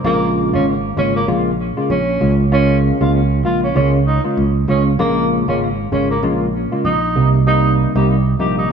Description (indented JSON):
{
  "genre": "afrobeats",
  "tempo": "97 BPM",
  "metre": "4/4",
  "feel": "swing 58% on 16ths",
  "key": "Bb dorian",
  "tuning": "A4 = 441 Hz",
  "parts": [
    { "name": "barky tine electric piano", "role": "accompaniment", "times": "0.0-8.6 s", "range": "C3 to F4", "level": "-18 LUFS", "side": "left 2 dB", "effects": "analog chorus" },
    { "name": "picked electric bass", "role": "bass", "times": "0.0-8.7 s", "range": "Ab1 to Db2", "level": "-17 LUFS", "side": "right 2 dB", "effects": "none" },
    { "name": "breathy tenor saxophone", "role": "melody", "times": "0.1-8.7 s", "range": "Bb3 to G4", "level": "-20 LUFS", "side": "right 2 dB", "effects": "analog delay" }
  ],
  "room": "moderate lush hall reverb, RT60 2.0 s, small room ambience",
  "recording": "dreamy mix soaked in reverb",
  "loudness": "-13 LUFS",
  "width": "side -6 dB against mid",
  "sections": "0.0-8.7 A section",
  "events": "none",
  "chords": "0.0 Bbm7; 2.2 Db6; 5.0 Bbm7; 7.2 Cm7",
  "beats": "| 0.04 0.66 1.28 1.90 | 2.52 3.14 3.76 4.37 | 4.99 5.61 6.23 6.85 | 7.47 8.09"
}